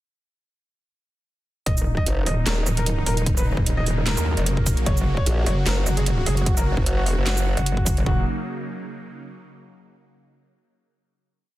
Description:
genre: heavy wobble dubstep.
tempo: 150 BPM.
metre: 4/4.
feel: swing 54% on 16ths, half-time.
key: Eb minor.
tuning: A4 = 440 Hz.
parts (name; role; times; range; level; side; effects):
warm grand piano; melody; 1.7-8.2 s; Eb4 to Eb5; -30 LUFS; equal; tape echo.
supersaw pad; sustained chords; 1.7-8.2 s; Db3 to Gb4; -30 LUFS; right 1 dB; phaser, sidechain pumping.
metallic wobble bass; bass; 1.7-8.2 s; Eb1 to Eb2; -22 LUFS; equal; distortion, chorus, overdrive.
dubstep drum kit; drums; 1.7-8.0 s; handclaps, hi-hat, shaker, snare drum; -27 LUFS; right 2 dB; none.
electronic kick drum; drums; 1.7-8.2 s; none; -23 LUFS; equal; none.
formant-sweep wobble bass; bass; 2.1-2.6, 5.3-7.6 s; Eb1 to Bb1; -22 LUFS; equal; chorus, overdrive.
room: digital ambience.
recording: dense, heavily limited modern master.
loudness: -20 LUFS.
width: side -16 dB against mid.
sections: 1.7-8.1 drop; 8.1-9.7 final chord.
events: drop 1.7-8.1.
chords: 1.7 Ebm7; 4.9 Gb; 8.1 Ebm7.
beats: | 1.66 2.06 2.46 2.86 | 3.26 3.66 4.06 4.46 | 4.86 5.26 5.66 6.06 | 6.46 6.86 7.26 7.66 | 8.06.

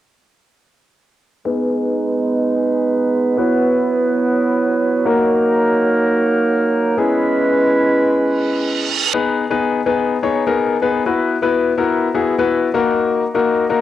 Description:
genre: pop.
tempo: 125 BPM.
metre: 4/4.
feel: straight.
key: G# minor.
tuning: A4 = 440 Hz.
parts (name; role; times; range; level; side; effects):
warm concert grand piano; accompaniment; 1.5-13.8 s; A#3 to C#5; -18 LUFS; left 4 dB; low-pass filter, cassette tape.
dark woodwind section; sustained chords; 1.5-9.1 s; F#3 to B4; -15 LUFS; right 2 dB; low-pass filter, cassette tape.
reverse cymbal; sound effects; 8.5-9.1 s; none; -21 LUFS; right 7 dB; none.
room: wet spring reverb, RT60 1.7 s, small room reverb.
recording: home recording on cassette.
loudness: -14 LUFS.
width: side -12 dB against mid.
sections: 1.5-9.1 A section; 9.1-13.8 B section.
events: filter sweep 1.5-9.1; reverse cymbal 8.5-9.1.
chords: 1.5 G#m; 3.4 Esus2; 5.1 D#m; 7.0 C#m7; 9.1 G#m; 11.1 Esus2; 12.7 D#m.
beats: | 1.46 1.94 2.42 2.90 | 3.38 3.86 4.34 4.82 | 5.30 5.78 6.26 6.74 | 7.22 7.70 8.18 8.66 | 9.14 9.62 10.10 10.58 | 11.06 11.54 12.02 12.50 | 12.98 13.46.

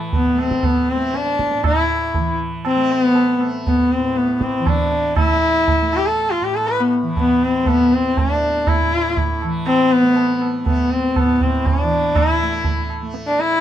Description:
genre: indian classical, Hindustani.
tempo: 120 BPM.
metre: 7/4.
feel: straight.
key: A raga darbari.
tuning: A4 = 440 Hz.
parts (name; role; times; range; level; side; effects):
tanpura; drone; 0.0-13.6 s; A2 to A3; -28 LUFS; right 1 dB; none.
tabla; percussion; 0.1-13.6 s; none; -22 LUFS; right 3 dB; none.
bright sarangi; melody; 0.2-13.6 s; B3 to B4; -17 LUFS; left 1 dB; none.
room: moderate small room reverb, RT60 0.5 s.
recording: minimal, uncompressed stereo recording.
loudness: -15 LUFS.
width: side -11 dB against mid.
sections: 0.0-13.6 A section.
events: none.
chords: none.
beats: 0.13 0.63 1.14 | 1.64 2.15 2.65 3.16 3.66 4.16 4.67 | 5.17 5.67 6.17 6.67 7.17 7.67 8.17 | 8.67 9.17 9.67 10.16 10.66 11.16 11.65 | 12.15 12.64 13.14.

